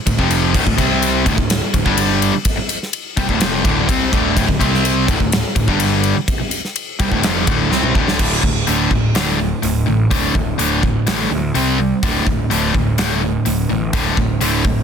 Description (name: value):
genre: hard rock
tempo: 125 BPM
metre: 4/4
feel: straight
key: D minor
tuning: A4 = 440 Hz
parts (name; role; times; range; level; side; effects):
- cranked stack guitar; riff; 0.1-14.8 s; D2 to C4; -19 LUFS; left 10 dB; overdrive
- sludgy distorted guitar; riff; 0.1-14.8 s; D2 to C4; -20 LUFS; right 10 dB; overdrive
- fuzz picked electric bass; bass; 0.1-14.8 s; D1 to D2; -22 LUFS; equal; overdrive
- gated 80s drum kit; drums; 0.1-14.8 s; crash cymbal, hi-hat, kick drum, ride cymbal, snare drum, toms; -19 LUFS; equal; none
room: small room ambience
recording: dense, heavily limited modern master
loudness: -14 LUFS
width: side -7 dB against mid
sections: 0.0-8.2 A section; 8.2-14.8 B section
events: drum fill 7.7-8.2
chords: 0.0 Dm; 0.8 C5; 1.3 D5; 1.9 G5; 2.3 Dm; 4.6 C5; 5.1 D5; 5.7 G5; 6.2 Dm; 8.2 D5; 11.5 C5; 12.0 D5